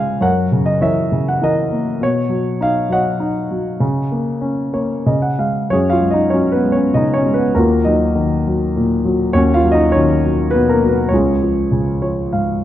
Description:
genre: classical, lyrical solo piano.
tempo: 100 BPM.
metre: 3/4.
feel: rubato.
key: F# major.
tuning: A4 = 437 Hz.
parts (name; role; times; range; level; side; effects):
dark concert grand piano; solo; 0.0-12.6 s; C#2 to G#5; -14 LUFS; equal; none.
room: moderate recital hall reverb, RT60 1.7 s.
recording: dark, warm production.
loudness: -14 LUFS.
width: side -12 dB against mid.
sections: 0.0-5.7 A section; 5.7-12.6 B section.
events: grand piano fill 4.4-5.7, 11.7-12.6.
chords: 0.2 F#7; 2.0 Badd9; 3.8 F#/C#; 5.1 C#; 5.7 F#sus2; 7.6 D#madd9; 9.4 Badd9/D#; 11.1 C#.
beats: | 0.23 0.83 1.42 | 2.01 2.61 3.21 | 3.83 4.45 5.08 | 5.72 6.34 6.95 | 7.56 8.16 8.76 | 9.35 9.94 10.54 | 11.13 11.73 12.34.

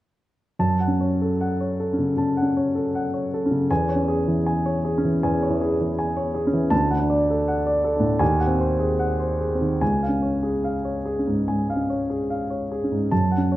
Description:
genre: classical, romantic character piece for solo piano.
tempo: 72-82 BPM.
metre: 4/4.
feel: rubato.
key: F# minor.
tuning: A4 = 440 Hz.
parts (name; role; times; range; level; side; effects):
warm grand piano; solo; 0.6-13.6 s; C#2 to A5; -20 LUFS; equal; none.
room: wet recital hall reverb, RT60 1.3 s.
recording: none.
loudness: -20 LUFS.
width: side -15 dB against mid.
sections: 0.6-13.6 A section.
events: none.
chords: 0.6 F#m; 3.7 C#m/E; 6.7 D; 8.2 G#7/D#; 9.8 C#.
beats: | 0.58 1.38 2.17 2.94 | 3.70 4.46 5.23 5.98 | 6.72 7.46 8.21 8.99 | 9.81 10.63 11.46 12.29 | 13.12.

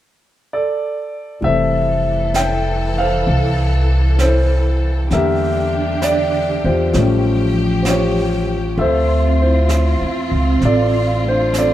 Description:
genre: jazz ballad.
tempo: 65 BPM.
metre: 4/4.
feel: swing 67% on 8ths.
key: F major.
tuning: A4 = 441 Hz.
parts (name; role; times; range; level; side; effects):
dark concert grand piano; accompaniment; 0.5-11.7 s; D3 to G5; -18 LUFS; left 1 dB; none.
warm symphonic string section; sustained chords; 1.4-11.7 s; D3 to A4; -22 LUFS; right 1 dB; none.
upright bass; bass; 1.4-11.7 s; F1 to E2; -17 LUFS; equal; none.
jazz brush drum kit; drums; 1.4-11.7 s; brushed snare drum, hi-hat, snare drum; -28 LUFS; right 2 dB; none.
room: moderate plate reverb, RT60 3.0 s.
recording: heard from further back in the room.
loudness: -14 LUFS.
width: side -13 dB against mid.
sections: 0.0-1.4 A section; 1.4-11.7 B section.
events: none.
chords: 0.0 N.C.; 1.4 Fmaj7; 5.1 Em7b5; 6.9 A7alt; 8.8 Dm9.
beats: 0.50 | 1.43 2.35 3.27 4.19 | 5.11 6.03 6.94 7.86 | 8.78 9.70 10.62 11.55.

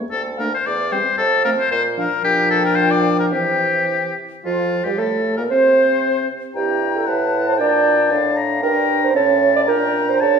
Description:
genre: quick classical-period movement for wind quintet.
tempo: 114 BPM.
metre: 2/4.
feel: rubato.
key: unclear.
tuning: A4 = 443 Hz.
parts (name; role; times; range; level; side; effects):
mellow French horn; accompaniment; 0.0-10.4 s; E3 to E4; -26 LUFS; left 1 dB; none.
mellow bassoon; bass; 0.0-10.4 s; D2 to C#3; -23 LUFS; right 2 dB; none.
clear oboe; second line; 0.1-10.4 s; F4 to Bb5; -20 LUFS; left 4 dB; none.
concert flute; melody; 0.4-10.4 s; F4 to Bb5; -25 LUFS; left 9 dB; none.
dark clarinet; accompaniment; 0.4-10.4 s; C4 to D5; -20 LUFS; right 6 dB; none.
room: wet recital hall reverb, RT60 1.5 s.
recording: recorded in a church or concert hall.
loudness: -15 LUFS.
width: side -6 dB against mid.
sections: 0.0-4.4 A section; 4.4-10.4 B section.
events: none.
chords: 0.1 D5; 0.7 C/E; 1.2 F; 1.7 Bb; 3.3 C; 4.4 Fsus2; 5.0 N.C.; 6.6 Gm; 7.1 Asus2; 7.6 Gm/Bb; 8.6 Gmadd11; 9.2 A; 9.7 Gm/Bb.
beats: | 0.12 0.66 | 1.19 1.71 | 2.24 2.77 | 3.32 3.89 | 4.44 4.98 | 5.51 6.03 | 6.55 7.07 | 7.59 8.11 | 8.64 9.16 | 9.69 10.22.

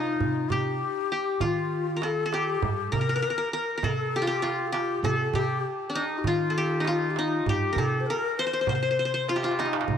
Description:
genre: Turkish makam ensemble.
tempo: 99 BPM.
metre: 4/4.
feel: straight.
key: unclear.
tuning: A4 = 440 Hz.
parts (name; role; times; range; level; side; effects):
qanun; melody; 0.0-10.0 s; D4-30c to C5; -27 LUFS; equal; none.
breathy bright low ney; second line; 0.0-9.9 s; Eb4 to C5; -30 LUFS; left 10 dB; none.
upright bass; bass; 0.0-10.0 s; G2 to Eb3; -31 LUFS; right 2 dB; none.
darbuka; percussion; 0.1-10.0 s; none; -32 LUFS; right 8 dB; none.
room: light reverb, small room ambience.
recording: 1960s-style stereo with parts hard left and right.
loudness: -24 LUFS.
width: side -8 dB against mid.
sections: 0.2-10.0 A section.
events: drum fill 9.3-9.9.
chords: none.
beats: | 0.21 0.81 1.42 2.02 | 2.63 3.23 3.83 4.44 | 5.04 5.65 6.25 6.86 | 7.46 8.07 8.67 9.28 | 9.88.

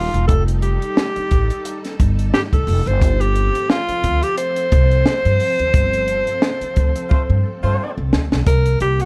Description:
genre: funk.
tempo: 88 BPM.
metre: 4/4.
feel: swing 56% on 16ths.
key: unclear.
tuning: A4 = 440 Hz.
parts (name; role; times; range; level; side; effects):
breathy alto saxophone; melody; 0.0-9.1 s; F4 to C5; -22 LUFS; equal; none.
string machine, full ensemble; sustained chords; 0.0-9.1 s; C3 to A4; -33 LUFS; equal; ensemble chorus.
upright bass; bass; 0.0-9.0 s; Eb1 to G2; -20 LUFS; equal; none.
compact cocktail drum kit; drums; 0.1-9.1 s; hi-hat, kick drum, snare drum; -20 LUFS; equal; none.
mellow horn section; second line; 7.1-7.9 s; A3 to C5; -27 LUFS; equal; none.
room: studio reverb.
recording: none.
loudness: -18 LUFS.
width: mono.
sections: 0.0-8.5 A section.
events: band accent 5.7-8.5; drum fill 7.1-8.5.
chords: 0.0 F9; 3.0 G9sus4; 8.5 C7.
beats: | 0.29 0.97 1.65 2.33 | 3.01 3.69 4.38 5.06 | 5.74 6.42 7.10 7.78 | 8.46.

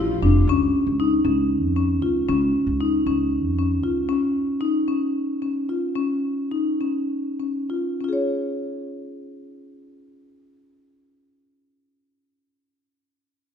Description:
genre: contemporary instrumental, chamber music in an uneven meter.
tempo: 192-232 BPM (eighths).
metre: 7/8.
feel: straight.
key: Db major.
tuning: A4 = 439 Hz.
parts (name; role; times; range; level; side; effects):
rich symphonic string section; sustained chords; 0.0-0.5 s; G3 to F4; -38 LUFS; left 4 dB; none.
marimba with medium mallets; arpeggios; 0.0-12.5 s; Db4 to Db5; -21 LUFS; left 2 dB; none.
upright bass; bass; 0.0-4.1 s; F1 to F2; -24 LUFS; right 2 dB; none.
room: wet scoring stage reverb, RT60 1.9 s.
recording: minimal, uncompressed stereo recording.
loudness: -20 LUFS.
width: side -8 dB against mid.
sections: 0.5-8.0 A section; 8.0-12.4 B section.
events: slowing down 4.1-8.0.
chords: 0.5 Db.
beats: 0.22 | 0.48 0.74 0.99 1.25 1.51 1.77 2.03 | 2.29 2.55 2.81 3.06 3.32 3.58 3.84 | 4.10 4.36 4.62 4.88 5.15 5.42 5.69 | 5.96 6.24 6.52 6.80 7.09 7.39 7.69 | 8.00 8.32 8.63 8.94 9.25 9.57 9.88 | 10.19 10.50 10.82 11.13 11.44 11.76 12.07.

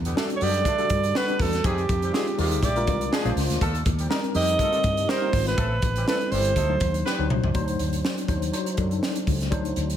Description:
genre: polished 1980s jazz-funk pop.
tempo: 122 BPM.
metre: 4/4.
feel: swing 54% on 16ths.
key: unclear.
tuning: A4 = 445 Hz.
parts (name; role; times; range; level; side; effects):
fretless electric bass; bass; 0.0-10.0 s; G1 to G2; -26 LUFS; equal; wide subtle chorus.
dark horn section; second line; 0.1-7.3 s; C3 to B4; -33 LUFS; left 1 dB; none.
crisp fusion drum kit; drums; 0.1-10.0 s; hi-hat, kick drum, snare drum, toms; -27 LUFS; equal; gated reverb.
tine electric piano; accompaniment; 0.2-10.0 s; F#3 to C5; -28 LUFS; left 4 dB; overdrive, fast stereo tremolo, ensemble chorus.
breathy alto saxophone; melody; 0.4-7.1 s; G4 to Eb5; -26 LUFS; right 4 dB; ping-pong delay.
room: light reverb, small room ambience.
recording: none.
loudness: -21 LUFS.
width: side -10 dB against mid.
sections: 0.0-7.5 A section; 7.5-10.0 B section.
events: drum fill 7.1-7.5.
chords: 0.0 Em11; 1.6 Fm9; 2.6 Bb7; 3.6 Eb6; 5.6 Am7; 6.6 D7b9.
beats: 0.17 0.66 1.15 | 1.64 2.13 2.63 3.12 | 3.61 4.10 4.60 5.09 | 5.58 6.07 6.57 7.06 | 7.55 8.04 8.53 9.03 | 9.52.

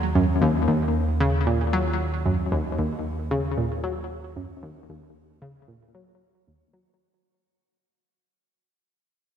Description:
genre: ambient, sequencer-driven space music.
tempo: 114 BPM.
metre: 4/4.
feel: straight.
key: Eb minor.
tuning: A4 = 440 Hz.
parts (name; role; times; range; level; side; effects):
fat analog bass; bass; 0.0-7.0 s; Eb2; -27 LUFS; right 1 dB; none.
analog pluck; riff; 0.2-6.8 s; Eb2 to Gb3; -24 LUFS; equal; chorus, shimmer reverb, ping-pong delay.
room: moderate lush hall reverb, RT60 2.8 s.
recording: dreamy mix soaked in reverb.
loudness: -22 LUFS.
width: side -9 dB against mid.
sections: 0.0-7.0 A section.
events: fade-out on analog synth bass 0.0-7.0; fade-out 0.0-7.0; filter sweep on synth arpeggio sound 0.0-7.0.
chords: 0.0 Ebm.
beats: 0.15 | 0.68 1.21 1.73 2.26 | 2.78 3.31 3.84 4.36 | 4.89 5.42 5.94 6.47.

